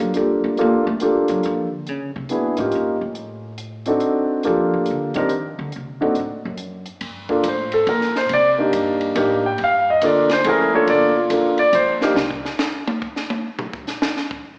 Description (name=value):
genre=jazz piano trio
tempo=140 BPM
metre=3/4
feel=swing 65% on 8ths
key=G minor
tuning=A4 = 440 Hz
part: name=dark concert grand piano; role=melody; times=0.0-12.2 s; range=A3 to G5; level=-20 LUFS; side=equal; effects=slapback echo
part: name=upright bass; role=bass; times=0.0-12.4 s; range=G1 to Bb3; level=-31 LUFS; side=equal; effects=none
part: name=compact cocktail drum kit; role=drums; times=0.1-14.4 s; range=hi-hat, kick drum, ride cymbal, snare drum, toms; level=-29 LUFS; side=equal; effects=none
room=moderate lush hall reverb, RT60 2.0 s, small room ambience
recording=live gig heard through the venue's PA, club reverb, AM radio sound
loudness=-20 LUFS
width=mono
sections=0.0-7.0 A section; 7.0-14.6 A section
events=upright bass solo 0.0-7.0; grand piano solo 7.0-14.6; drum solo 12.2-14.6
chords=0.0 Gm7; 1.9 Eb7; 3.2 D7b9; 4.4 Gm7; 5.3 N.C.; 5.7 D7 (rootless); 7.0 Gm; 8.3 Cm7; 9.6 Gm7; 12.2 N.C.